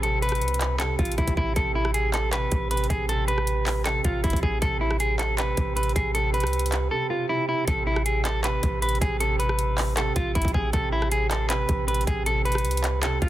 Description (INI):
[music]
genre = hip hop, trap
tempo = 157 BPM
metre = 4/4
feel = half-time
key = A harmonic minor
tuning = A4 = 440 Hz
[part]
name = clean electric guitar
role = melody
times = 0.0-13.3 s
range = E4 to B4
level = -27 LUFS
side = equal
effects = warbly pitch drift, tape echo
[part]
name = dark baby grand piano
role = accompaniment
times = 0.0-13.3 s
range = C3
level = -31 LUFS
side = right 4 dB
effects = none
[part]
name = clean 808-style bass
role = bass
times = 0.0-13.3 s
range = G#1 to C2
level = -27 LUFS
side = equal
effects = none
[part]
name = trap drum kit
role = drums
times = 0.0-13.3 s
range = handclaps, hi-hat, kick drum, rim click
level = -28 LUFS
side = equal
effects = none
[sound]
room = digital ambience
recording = dense, heavily limited modern master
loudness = -22 LUFS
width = side -14 dB against mid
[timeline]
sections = 0.0-7.7 A section; 7.7-13.3 B section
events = none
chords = 0.0 Amadd9